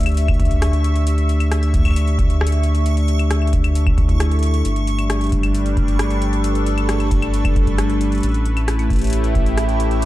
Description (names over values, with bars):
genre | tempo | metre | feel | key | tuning
IDM | 134 BPM | 4/4 | straight | unclear | A4 = 440 Hz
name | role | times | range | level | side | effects
phased analog pad | sustained chords | 0.0-10.1 s | G3 to E5 | -25 LUFS | equal | phaser, chorus
vibraphone with soft mallets | arpeggios | 0.0-10.1 s | A3 to D5 | -25 LUFS | left 3 dB | ping-pong delay
round analog bass | bass | 0.0-10.1 s | G1 to D2 | -18 LUFS | equal | none
electro analog drum machine | drums | 0.0-10.1 s | claves, hi-hat, rim click | -28 LUFS | left 2 dB | none
backwards swelling texture | texture | 0.0-10.1 s | C#6 | -33 LUFS | right 2 dB | built-in reverb, sidechain pumping
electronic kick drum | drums | 0.3-9.4 s | none | -19 LUFS | equal | none
room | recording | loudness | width
little or no reverb | dark, warm production | -15 LUFS | side -15 dB against mid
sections
0.0-10.1 A section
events
none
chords
0.0 D5; 4.7 Gadd9; 8.2 A7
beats
0.17 0.62 | 1.07 1.51 1.96 2.41 | 2.86 3.31 3.75 4.20 | 4.65 5.10 5.54 5.99 | 6.44 6.89 7.34 7.78 | 8.23 8.68 9.13 9.57 | 10.02